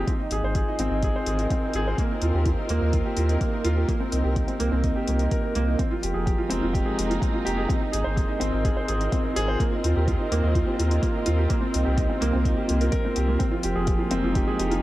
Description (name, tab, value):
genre	piano and strings electronica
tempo	126 BPM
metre	4/4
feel	straight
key	C minor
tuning	A4 = 440 Hz
part	dark studio string section	sustained chords	0.0-14.8 s	F3 to Bb4	-32 LUFS	equal	sidechain pumping
part	warm upright piano	riff	0.0-14.8 s	Bb3 to C5	-26 LUFS	right 1 dB	tape echo
part	warm sub bass	bass	0.0-14.8 s	F1 to Eb2	-25 LUFS	equal	sidechain pumping
part	electronic hi-hat	drums	0.1-14.8 s	none	-36 LUFS	left 3 dB	overdrive
part	electronic kick drum	drums	0.1-14.5 s	none	-26 LUFS	equal	overdrive
room	light reverb, digital ambience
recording	none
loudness	-22 LUFS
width	side -16 dB against mid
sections	0.0-14.8 A section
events	none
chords	0.1 Ab; 2.0 Ebadd9; 3.9 Cm7; 5.8 Fmadd9; 7.7 Ab; 9.6 Ebadd9; 11.5 Cm7; 13.4 Fmadd9